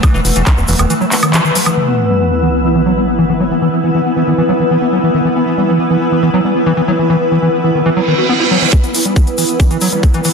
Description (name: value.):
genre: psychedelic trance.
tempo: 138 BPM.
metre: 4/4.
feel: straight.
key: unclear.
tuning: A4 = 440 Hz.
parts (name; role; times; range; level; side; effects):
pulsing gated texture; sustained chords; 0.0-10.3 s; E3 to B3; -18 LUFS; left 1 dB; chorus, built-in reverb, sidechain pumping.
liquid acid bass; riff; 0.0-10.3 s; D#3 to F#4; -16 LUFS; moving between left 3 dB and right 5 dB; chorus, auto-pan, sidechain pumping, dub echo.
electronic kick drum; drums; 0.0-0.6, 8.7-10.1 s; none; -10 LUFS; equal; none.
techno drum kit; drums; 0.0-1.7, 8.7-10.3 s; handclaps, hi-hat, woodblock; -17 LUFS; right 1 dB; overdrive.
egg shaker; percussion; 0.0-1.8, 8.7-10.3 s; none; -24 LUFS; left 6 dB; none.
granular cloud pad; texture; 0.0-10.3 s; E3 to E6; -17 LUFS; left 1 dB; built-in reverb, sidechain pumping.
fat analog bass; bass; 0.1-0.9 s; E1; -15 LUFS; equal; tube saturation.
vowel-sweep wobble bass; second line; 0.6-0.8 s; B3; -32 LUFS; right 2 dB; none.
sub drop, reverse cymbal and riser; sound effects; 1.8-3.5, 8.0-10.3 s; none; -18 LUFS; right 2 dB; none.
room: wet lush hall reverb, RT60 1.6 s.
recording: dense, heavily limited modern master.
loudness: -10 LUFS.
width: side -5 dB against mid.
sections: 0.0-1.8 A section; 1.8-8.7 B section; 8.7-10.3 C section.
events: kick drops out 0.9-1.8; band accent 1.3; impact 1.8-3.5; reverse cymbal 8.0-8.7; build-up 8.7-10.3; filter sweep on acid bass 8.7-10.3.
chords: 0.0 E5.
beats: | 0.03 0.47 0.90 1.34 | 1.77 2.21 2.64 3.08 | 3.51 3.94 4.38 4.81 | 5.25 5.68 6.12 6.55 | 6.99 7.42 7.86 8.29 | 8.73 9.16 9.60 10.03.